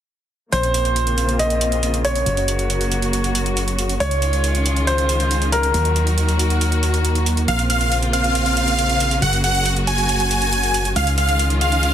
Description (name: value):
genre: uplifting trance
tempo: 138 BPM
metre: 4/4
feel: straight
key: Bb minor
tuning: A4 = 442 Hz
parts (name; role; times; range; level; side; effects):
- clear grand piano; second line; 0.5-7.4 s; Bb4 to Eb5; -22 LUFS; equal; dub echo
- clear symphonic string section; sustained chords; 0.5-11.9 s; Db3 to Gb4; -23 LUFS; equal; low-pass filter
- solid FM bass; bass; 0.5-11.9 s; Gb1 to Eb2; -21 LUFS; equal; none
- electronic hi-hat; drums; 0.5-11.9 s; none; -26 LUFS; right 3 dB; none
- big supersaw lead; melody; 7.5-11.9 s; F5 to Ab5; -19 LUFS; equal; phaser, dub echo
room: moderate lush hall reverb, RT60 1.8 s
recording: dense, heavily limited modern master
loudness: -16 LUFS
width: side -10 dB against mid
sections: 0.5-11.9 A section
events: filter sweep on string section 0.5-11.9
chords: 0.5 Bbmadd9; 2.3 Gb; 4.0 Dbadd9; 5.7 Ebm; 7.5 Bbmadd9; 9.2 Gb; 11.0 Dbadd9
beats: | 0.53 0.96 1.40 1.83 | 2.26 2.70 3.13 3.57 | 4.00 4.44 4.87 5.31 | 5.74 6.18 6.61 7.05 | 7.48 7.92 8.35 8.79 | 9.22 9.66 10.09 10.53 | 10.96 11.39 11.83